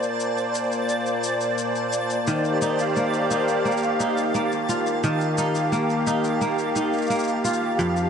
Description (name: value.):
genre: folktronica.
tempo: 87 BPM.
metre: 4/4.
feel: straight.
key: unclear.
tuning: A4 = 440 Hz.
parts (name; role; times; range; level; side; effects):
musette accordion; sustained chords; 0.0-8.1 s; Bb2 to F5; -23 LUFS; equal; none.
shaker; drums; 0.0-8.1 s; none; -36 LUFS; left 5 dB; none.
twinkling granular texture; texture; 0.0-8.1 s; A5; -33 LUFS; right 2 dB; built-in reverb.
kora; arpeggios; 2.3-8.1 s; F2 to F4; -25 LUFS; equal; analog delay.
room: wet huge ambient reverb, RT60 7.9 s.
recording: dreamy mix soaked in reverb, nothing above 10.9 kHz.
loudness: -21 LUFS.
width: side -7 dB against mid.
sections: 0.0-8.1 A section.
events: none.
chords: 0.0 Bbadd9; 2.3 Ebadd9.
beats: 0.20 0.89 1.58 | 2.27 2.96 3.65 4.34 | 5.03 5.72 6.41 7.10 | 7.79.